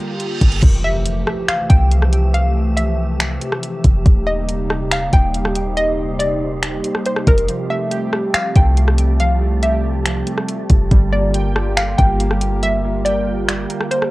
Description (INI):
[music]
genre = hip hop, atmospheric cloud-rap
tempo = 140 BPM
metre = 4/4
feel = half-time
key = F major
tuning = A4 = 440 Hz
[part]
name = hollow soft pad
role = sustained chords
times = 0.0-14.1 s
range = C3 to G4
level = -24 LUFS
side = equal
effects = chorus, sidechain pumping, cassette tape
[part]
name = reverse cymbal and impact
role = sound effects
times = 0.0-2.3 s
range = none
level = -30 LUFS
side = right 2 dB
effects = none
[part]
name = wind-like tuned noise texture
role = texture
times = 0.0-14.1 s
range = E3 to E6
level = -32 LUFS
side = left 1 dB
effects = built-in reverb, cassette tape
[part]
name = smooth R&B drum kit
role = drums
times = 0.2-14.1 s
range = crash cymbal, finger snaps, hi-hat, kick drum, rim click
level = -16 LUFS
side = equal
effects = none
[part]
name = warm 808-style bass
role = bass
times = 0.4-13.7 s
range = Eb1 to C2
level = -18 LUFS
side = equal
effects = none
[part]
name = hollow square pluck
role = melody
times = 0.8-14.1 s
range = Bb4 to G5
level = -22 LUFS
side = equal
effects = chorus, cassette tape, analog delay
[part]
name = warbly lo-fi synth keys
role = arpeggios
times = 7.5-14.1 s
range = F3 to G5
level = -25 LUFS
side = right 5 dB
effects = chorus, cassette tape, analog delay
[sound]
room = digital ambience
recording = home recording on cassette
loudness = -14 LUFS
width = side -19 dB against mid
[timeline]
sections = 0.6-14.1 A section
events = reverse cymbal 0.0-0.6; impact 0.6-2.3; break 7.5-8.3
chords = 0.0 Gm7; 0.6 Fmaj9; 4.1 Eb6; 7.5 Fmaj9; 10.9 Gm7